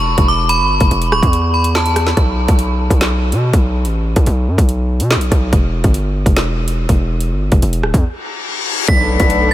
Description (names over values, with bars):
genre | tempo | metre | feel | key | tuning
hip hop, drill | 143 BPM | 4/4 | half-time | unclear | A4 = 442 Hz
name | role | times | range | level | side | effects
metallic FM bell | melody | 0.0-2.1, 8.9-9.5 s | A5 to B6 | -18 LUFS | equal | chorus, tape echo
distorted 808-style bass | bass | 0.0-9.5 s | D1 to B2 | -16 LUFS | equal | distortion
drill drum kit | drums | 0.2-9.4 s | handclaps, hi-hat, kick drum, rim click, snare drum | -16 LUFS | equal | none
reverse cymbal and impact | sound effects | 8.2-9.5 s | none | -20 LUFS | left 4 dB | none
muted chamber string section | sustained chords | 8.9-9.5 s | A3 to D4 | -18 LUFS | left 3 dB | none
room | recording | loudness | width
light reverb | none | -12 LUFS | side -14 dB against mid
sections
0.0-8.9 A section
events
break 8.0-8.9; reverse cymbal 8.2-8.9; impact 8.9-9.5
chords
0.0 E5; 2.2 B5; 5.5 Em; 8.9 Bm7